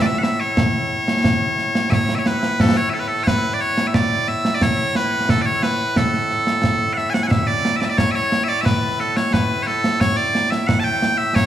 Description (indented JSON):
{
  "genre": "scottish traditional, Scottish pipe music",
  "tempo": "89 BPM",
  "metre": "2/4",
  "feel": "straight",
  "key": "A major",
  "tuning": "A4 = 439 Hz",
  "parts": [
    { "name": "loud bright bagpipes", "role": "melody", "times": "0.0-11.5 s", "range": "A2 to A5", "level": "-19 LUFS", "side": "equal", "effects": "none" },
    { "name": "concert snare drum and concert bass drum", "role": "drums", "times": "0.2-11.5 s", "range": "none", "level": "-20 LUFS", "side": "right 1 dB", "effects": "none" }
  ],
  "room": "wet concert hall reverb, RT60 1.8 s",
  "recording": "heard from further back in the room",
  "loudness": "-16 LUFS",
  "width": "side -11 dB against mid",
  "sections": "0.0-7.3 A section; 7.3-11.5 B section",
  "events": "none",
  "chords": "none"
}